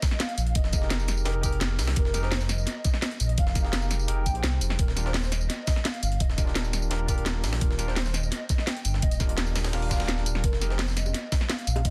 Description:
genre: liquid drum and bass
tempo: 170 BPM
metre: 4/4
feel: straight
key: Eb major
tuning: A4 = 440 Hz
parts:
  - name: hollow clarinet-like synth lead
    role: melody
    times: 0.0-11.9 s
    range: Bb4 to G5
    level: -40 LUFS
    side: equal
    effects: ensemble chorus, dub echo
  - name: breakbeat sampler-style drum kit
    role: drums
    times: 0.0-11.9 s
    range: hi-hat, snare drum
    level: -39 LUFS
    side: equal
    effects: high-pass filter on hats, high-pass filter on snare
  - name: drum and bass drum kit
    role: drums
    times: 0.0-11.9 s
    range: hi-hat, snare drum, tambourine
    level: -33 LUFS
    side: equal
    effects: none
  - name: electronic kick drum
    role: drums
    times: 0.0-11.9 s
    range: none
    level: -28 LUFS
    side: equal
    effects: none
  - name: dark detuned saw bass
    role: bass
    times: 0.4-11.9 s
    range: Eb1 to C2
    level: -30 LUFS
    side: equal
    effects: none
  - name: tine electric piano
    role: accompaniment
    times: 0.7-10.8 s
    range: D4 to C5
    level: -39 LUFS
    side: equal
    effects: dub echo
  - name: bongos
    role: percussion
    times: 11.1-11.8 s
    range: none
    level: -39 LUFS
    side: equal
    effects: none
room: little or no reverb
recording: dense, heavily limited modern master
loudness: -27 LUFS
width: mono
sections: 0.0-11.9 A section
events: none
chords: 0.0 Fm11; 4.8 Ebmaj9; 10.4 F7sus4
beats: 0.20 | 0.56 0.91 1.26 1.61 | 1.97 2.32 2.67 3.03 | 3.38 3.73 4.08 4.44 | 4.79 5.14 5.50 5.85 | 6.20 6.56 6.91 7.26 | 7.61 7.97 8.32 8.67 | 9.03 9.38 9.73 10.09 | 10.44 10.79 11.14 11.50 | 11.85

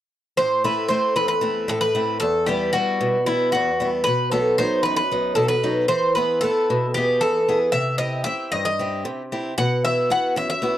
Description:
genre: greek folk, Greek bouzouki band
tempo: 228 BPM (eighths)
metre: 7/8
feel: straight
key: A dorian sharp4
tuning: A4 = 440 Hz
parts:
  - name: Greek bouzouki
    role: melody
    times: 0.4-10.8 s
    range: E4 to F#5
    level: -21 LUFS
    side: equal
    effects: none
  - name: picked old ladder-braced acoustic guitar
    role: accompaniment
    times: 0.4-10.8 s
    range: E2 to B4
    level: -22 LUFS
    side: equal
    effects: none
room: light reverb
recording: dry, close 1970s-style studio recording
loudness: -19 LUFS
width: side -12 dB against mid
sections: 0.4-10.8 A section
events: none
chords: 0.4 Am; 2.2 Em; 4.1 B; 5.9 E; 7.7 C; 9.6 Bsus4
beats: | 0.38 0.64 0.91 1.17 1.43 1.70 1.96 | 2.22 2.49 2.75 3.01 3.27 3.54 3.80 | 4.06 4.33 4.59 4.85 5.12 5.38 5.64 | 5.90 6.17 6.43 6.69 6.95 7.21 7.48 | 7.74 8.00 8.26 8.53 8.79 9.05 9.31 | 9.57 9.84 10.10 10.36 10.62

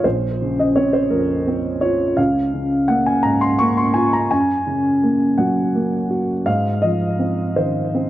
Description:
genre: neoclassical minimalist piano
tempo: 56 BPM (dotted quarters)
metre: 6/8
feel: rubato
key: Db major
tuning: A4 = 440 Hz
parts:
  - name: dark upright piano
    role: solo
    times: 0.0-8.1 s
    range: Bb1 to Db6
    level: -16 LUFS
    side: equal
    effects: tape echo
room: small room ambience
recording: dry, close 1970s-style studio recording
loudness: -16 LUFS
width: side -14 dB against mid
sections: 0.0-8.1 A section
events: none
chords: 0.0 Bbmadd9; 2.2 Db6; 4.3 Gbadd9; 6.5 Fm7/Ab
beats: | 0.04 1.11 | 2.17 3.24 | 4.31 5.39 | 6.47 7.56

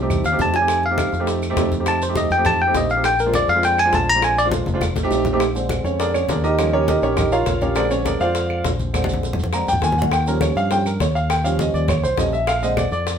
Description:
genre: Afro-Cuban jazz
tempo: 204 BPM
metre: 4/4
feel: straight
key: Bb major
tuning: A4 = 440 Hz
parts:
  - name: warm concert grand piano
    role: accompaniment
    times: 0.0-13.2 s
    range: D3 to Bb5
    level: -21 LUFS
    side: right 2 dB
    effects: none
  - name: fingered electric bass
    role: bass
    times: 0.0-13.2 s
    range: F1 to G2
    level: -24 LUFS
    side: left 1 dB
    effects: none
  - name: claves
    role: percussion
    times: 0.1-12.9 s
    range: none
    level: -34 LUFS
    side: right 2 dB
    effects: none
  - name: congas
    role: percussion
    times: 0.1-13.2 s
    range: none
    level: -26 LUFS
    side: left 1 dB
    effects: none
  - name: maracas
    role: percussion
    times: 0.1-13.2 s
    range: none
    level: -35 LUFS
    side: right 2 dB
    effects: none
  - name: bongos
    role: percussion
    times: 0.2-13.2 s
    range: none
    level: -28 LUFS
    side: left 4 dB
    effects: none
  - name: bell-like tine electric piano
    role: melody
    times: 0.3-4.5 s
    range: Bb4 to Bb5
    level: -17 LUFS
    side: left 1 dB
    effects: none
room: wet studio ambience, RT60 0.5 s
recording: band playing live in one room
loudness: -17 LUFS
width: side -8 dB against mid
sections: 0.0-5.4 A section; 5.4-13.2 A section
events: drum fill 0.0-0.7, 4.7-5.4, 8.9-10.1; tine electric piano solo 0.0-5.4; grand piano solo 5.4-13.2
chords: 0.0 F9; 3.0 Bb9; 4.8 F9; 5.4 Bb9; 6.6 Eb9; 7.8 Bb9; 10.1 Eb9; 12.5 Bb9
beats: 0.10 0.40 | 0.69 0.98 1.28 1.57 | 1.87 2.16 2.46 2.75 | 3.05 3.34 3.63 3.93 | 4.22 4.52 4.81 5.11 | 5.40 5.70 5.99 6.29 | 6.58 6.88 7.17 7.47 | 7.76 8.06 8.35 8.65 | 8.94 9.24 9.53 9.83 | 10.12 10.41 10.71 11.00 | 11.30 11.59 11.89 12.18 | 12.48 12.77 13.07

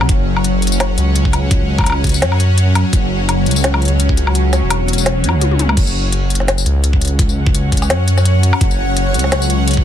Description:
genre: half-time drum and bass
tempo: 169 BPM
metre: 4/4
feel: swing 55% on 16ths, half-time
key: unclear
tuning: A4 = 440 Hz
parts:
  - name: bowed-like drone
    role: sustained chords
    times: 0.0-9.8 s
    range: F#3 to F#5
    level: -20 LUFS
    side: left 1 dB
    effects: built-in reverb, phaser, sidechain pumping
  - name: dark detuned saw bass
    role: bass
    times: 0.0-9.8 s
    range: E1 to F#2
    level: -15 LUFS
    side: equal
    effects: none
  - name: organic electronic drum kit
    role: drums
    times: 0.0-9.8 s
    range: crash cymbal, hi-hat, snare drum, tambourine, toms, woodblock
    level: -19 LUFS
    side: left 2 dB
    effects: small room ambience
  - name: electronic kick drum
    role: drums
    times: 0.1-9.8 s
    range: none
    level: -15 LUFS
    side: equal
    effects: small room ambience
room: digital ambience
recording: dense, heavily limited modern master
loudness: -12 LUFS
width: side -10 dB against mid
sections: 0.0-5.8 A section; 5.8-9.8 A section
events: drop 0.0-5.8, 5.8-9.8; kick drops out 4.3-5.8; drum fill 5.4-5.8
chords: 0.0 F#5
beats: | 0.09 0.45 0.80 1.16 | 1.51 1.86 2.22 2.58 | 2.93 3.29 3.64 4.00 | 4.35 4.71 5.06 5.42 | 5.77 6.12 6.48 6.83 | 7.19 7.54 7.90 8.26 | 8.61 8.96 9.32 9.68

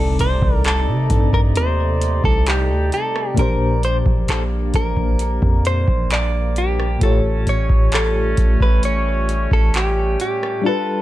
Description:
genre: contemporary R&B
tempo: 66 BPM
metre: 4/4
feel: straight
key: unclear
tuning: A4 = 440 Hz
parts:
  - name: direct-recorded clean electric guitar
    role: melody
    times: 0.0-11.0 s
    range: G4 to D5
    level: -22 LUFS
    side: equal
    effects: wide subtle chorus, ping-pong delay
  - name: FM electric piano with tremolo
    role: accompaniment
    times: 0.0-11.0 s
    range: A2 to D5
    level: -25 LUFS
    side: left 3 dB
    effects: phaser
  - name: mellow brass ensemble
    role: sustained chords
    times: 0.0-11.0 s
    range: C3 to D5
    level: -29 LUFS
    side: right 1 dB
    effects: sidechain pumping
  - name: long sustained 808-style bass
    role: bass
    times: 0.0-10.2 s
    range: A1 to C3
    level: -19 LUFS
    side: equal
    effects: none
  - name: impact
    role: sound effects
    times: 0.0-3.4 s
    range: none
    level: -31 LUFS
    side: equal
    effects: none
  - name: booming analog drum machine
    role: drums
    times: 0.2-10.6 s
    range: handclaps, hi-hat, kick drum, rim click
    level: -19 LUFS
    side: equal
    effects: vintage 12-bit sampler grit
room: little or no reverb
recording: none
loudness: -15 LUFS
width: side -15 dB against mid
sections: 0.0-11.0 A section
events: impact 0.0-3.4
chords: 0.0 Cm69; 3.4 Bb69; 7.0 A7b13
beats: 0.65 1.56 2.47 | 3.38 4.29 5.20 6.10 | 7.01 7.92 8.83 9.74 | 10.65

